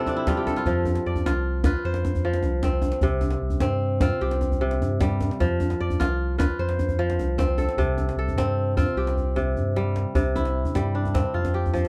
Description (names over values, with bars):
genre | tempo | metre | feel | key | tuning
west african traditional, West African string and xylophone music | 101 BPM (dotted quarters) | 12/8 | straight | F lydian | A4 = 440 Hz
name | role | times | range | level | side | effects
kora | arpeggios | 0.0-11.9 s | C3 to D5 | -28 LUFS | equal | none
djembe | percussion | 0.1-11.9 s | none | -29 LUFS | equal | none
saturated sub bass | bass | 0.7-11.8 s | C2 to G2 | -28 LUFS | equal | none
room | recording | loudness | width
light reverb | dark, warm production | -24 LUFS | mono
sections
0.0-10.2 A section; 10.2-11.9 B section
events
kora fill 0.0-0.7; drum fill 9.2-10.2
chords
0.0 C5; 0.7 F5; 3.0 C5; 5.4 F5; 7.8 C5; 10.2 C; 11.3 Dmadd11/F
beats
0.07 | 0.66 1.25 1.85 2.44 | 3.03 3.63 4.22 4.81 | 5.41 6.00 6.59 7.19 | 7.78 8.37 8.97 9.56 | 10.15 10.75 11.34